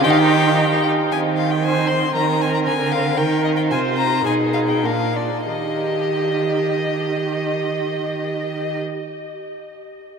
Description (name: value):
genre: quick classical-period movement for string quartet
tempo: 93-118 BPM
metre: 2/4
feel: straight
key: Eb major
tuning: A4 = 440 Hz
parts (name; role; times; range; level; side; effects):
- rich violin; melody; 0.0-8.8 s; D5 to C6; -24 LUFS; left 5 dB; none
- warm violin; second line; 0.0-8.8 s; C4 to Eb5; -24 LUFS; left 2 dB; none
- clear viola; accompaniment; 0.0-8.8 s; Eb4 to C5; -23 LUFS; right 1 dB; none
- warm cello; bass; 0.0-8.8 s; Bb2 to Eb3; -22 LUFS; right 7 dB; none
room: wet huge ambient reverb, RT60 8.6 s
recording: in a vast, echoing space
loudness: -17 LUFS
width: side -6 dB against mid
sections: 0.0-1.1 A section; 1.1-5.5 B section; 5.5-8.0 C section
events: slowing down 2.7-5.5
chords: 0.0 Eb; 1.1 Fm7/Eb (rootless); 2.2 Bb/Eb; 3.2 Eb; 3.7 N.C.; 4.2 Abm/Cb; 4.8 Bb; 5.5 Eb